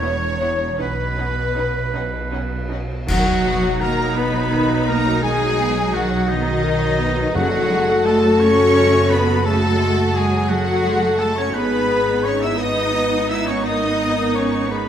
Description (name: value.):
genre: cinematic, emotional film score for orchestra.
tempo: 57 BPM (dotted quarters).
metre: 6/8.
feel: rubato.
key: B major.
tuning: A4 = 440 Hz.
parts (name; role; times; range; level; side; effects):
warm studio violin section; melody; 0.0-14.9 s; D#5 to E6; -27 LUFS; left 2 dB; none.
rich studio violin section; second line; 0.0-14.9 s; D#4 to E5; -25 LUFS; left 3 dB; none.
warm oboe; second line; 0.0-14.9 s; D#4 to E5; -28 LUFS; right 2 dB; none.
rich studio viola section; accompaniment; 0.0-14.9 s; C#3 to F#4; -24 LUFS; right 1 dB; none.
rich studio cello section; bass; 0.0-14.9 s; E2 to E4; -24 LUFS; right 1 dB; none.
rich studio double bass section; bass; 0.0-14.9 s; E1 to B1; -24 LUFS; right 2 dB; none.
hollow concert flute; second line; 3.1-14.9 s; D#5 to E6; -28 LUFS; left 1 dB; none.
mellow French horn section; sustained chords; 3.1-14.9 s; D#4 to B4; -22 LUFS; left 2 dB; none.
clash cymbals and concert bass drum; percussion; 3.1-4.5 s; none; -28 LUFS; left 1 dB; none.
timpani; percussion; 7.4-8.4 s; F#2; -27 LUFS; equal; none.
room: moderate scoring stage reverb, RT60 1.6 s.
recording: none.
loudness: -16 LUFS.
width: side -9 dB against mid.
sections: 0.0-3.1 A section; 3.1-14.9 B section.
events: band accent 3.1-3.8.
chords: 0.0 Esus2; 0.8 Badd9; 3.1 B; 7.3 F#madd9; 11.5 G#madd9.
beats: | 0.80 1.94 | 3.08 4.17 | 5.23 6.29 | 7.34 8.40 | 9.46 10.51 | 11.55 12.60 | 13.64 14.70.